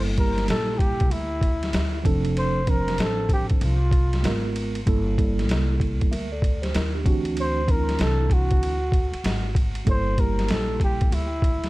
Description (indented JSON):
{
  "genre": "hip hop, jazz-hop",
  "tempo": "96 BPM",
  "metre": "4/4",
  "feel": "swing 62% on 16ths",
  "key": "G dorian",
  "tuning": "A4 = 441 Hz",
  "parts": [
    { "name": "mellow flugelhorn", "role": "melody", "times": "0.0-11.7 s", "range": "E4 to C5", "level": "-28 LUFS", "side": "equal", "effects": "tape echo" },
    { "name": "mellow tine electric piano", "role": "accompaniment", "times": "0.0-11.3 s", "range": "E3 to E5", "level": "-28 LUFS", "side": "right 3 dB", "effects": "medium stereo tremolo" },
    { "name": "upright bass", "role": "bass", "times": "0.0-11.7 s", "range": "F1 to Eb2", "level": "-26 LUFS", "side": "equal", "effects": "none" },
    { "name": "boom bap sampler-style drum kit", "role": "drums", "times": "0.2-11.7 s", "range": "hi-hat, kick drum, ride cymbal, snare drum", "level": "-24 LUFS", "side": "equal", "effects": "none" }
  ],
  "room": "little or no reverb",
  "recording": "dark, warm production, vinyl crackle",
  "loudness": "-20 LUFS",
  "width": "side -19 dB against mid",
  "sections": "0.0-9.9 A section; 9.9-11.7 A section",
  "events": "none",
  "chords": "0.0 Gm6; 2.1 F6; 4.2 Abm69; 4.9 Gm69; 7.1 D9; 9.9 Gm69",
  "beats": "0.49 1.12 1.74 | 2.37 2.99 3.62 4.24 | 4.87 5.49 6.12 6.74 | 7.37 7.99 8.62 9.24 | 9.87 10.49 11.12"
}